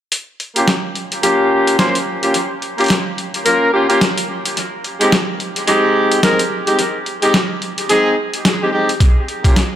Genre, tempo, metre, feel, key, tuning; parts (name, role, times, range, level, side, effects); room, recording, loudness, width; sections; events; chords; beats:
glitch hop; 108 BPM; 4/4; swing 58% on 16ths; A4 = 440 Hz
boom bap sampler-style drum kit; drums; 0.1-9.7 s; hi-hat, snare drum; -18 LUFS; equal; small room ambience, dub echo
clear horn section; stabs; 0.6-9.6 s; Ab3 to C5; -15 LUFS; equal; sidechain pumping, low-pass filter, dub echo
electronic kick drum; drums; 9.0-9.5 s; -12 LUFS; equal; small room ambience
wet echo chamber reverb, RT60 2.0 s; echo-heavy mix; -13 LUFS; side -10 dB against mid
0.1-9.8 A section
filter sweep on horn section 0.1-9.8
0.1 Bbm6; 4.6 Abmaj7; 9.0 Bbm6
| 0.12 0.68 1.23 1.79 | 2.34 2.90 3.45 4.01 | 4.57 5.12 5.68 6.23 | 6.79 7.34 7.90 8.45 | 9.01 9.56